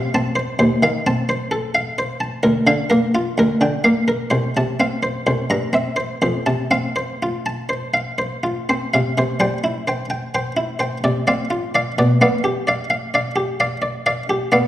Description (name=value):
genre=classical, baroque-style suite movement for harpsichord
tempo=64 BPM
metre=3/4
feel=rubato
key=F major, C major from 9.2 s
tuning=A4 = 439 Hz
part: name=buff-stop harpsichord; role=solo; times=0.0-14.7 s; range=C2 to Bb5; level=-17 LUFS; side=equal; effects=none
room=wet recital hall reverb, RT60 1.4 s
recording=recorded in a church or concert hall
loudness=-17 LUFS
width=side -13 dB against mid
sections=0.0-9.2 A section; 9.2-14.7 A section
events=none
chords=0.0 F; 0.6 F7/Eb; 2.4 Bb/D; 3.4 Gm7/D; 4.3 F/C; 5.3 C7; 6.2 F; 9.2 C; 11.0 Dm7/C; 12.0 G7/B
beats=| 0.60 1.52 2.45 | 3.38 4.31 5.26 | 6.23 7.22 8.21 | 9.18 10.12 11.05 | 11.97 12.89 13.82